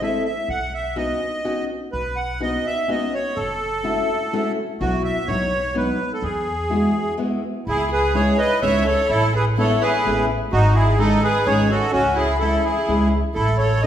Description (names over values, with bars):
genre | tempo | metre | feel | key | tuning
musette waltz | 126 BPM | 3/4 | straight | E major, C# minor from 7.7 s | A4 = 440 Hz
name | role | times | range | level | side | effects
accordion | melody | 0.0-13.9 s | C#4 to F#5 | -21 LUFS | right 1 dB | light tremolo tuning
fingerpicked steel-string acoustic guitar | accompaniment | 0.0-13.9 s | D#3 to A4 | -24 LUFS | left 1 dB | none
upright bass | bass | 0.5-13.9 s | F#1 to E2 | -24 LUFS | equal | none
warm violin | second line | 7.7-13.9 s | C#4 to C#5 | -28 LUFS | right 3 dB | none
room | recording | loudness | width
wet recital hall reverb, RT60 1.4 s | recorded in a church or concert hall | -18 LUFS | side -10 dB against mid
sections
0.0-7.7 A section; 7.7-13.9 B section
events
break 7.2-7.7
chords
0.5 Badd9; 3.4 F#m7; 4.8 Bsus4; 5.3 B; 6.2 Eadd9; 7.7 C#madd9; 9.1 Aadd9; 10.5 G#sus4; 11.9 C#m; 13.4 A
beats
0.00 | 0.47 0.95 1.44 | 1.92 2.40 2.89 | 3.37 3.85 4.32 | 4.80 5.27 5.75 | 6.22 6.70 7.18 | 7.66 8.14 8.62 | 9.09 9.57 10.04 | 10.51 10.98 11.45 | 11.93 12.40 12.88 | 13.36 13.83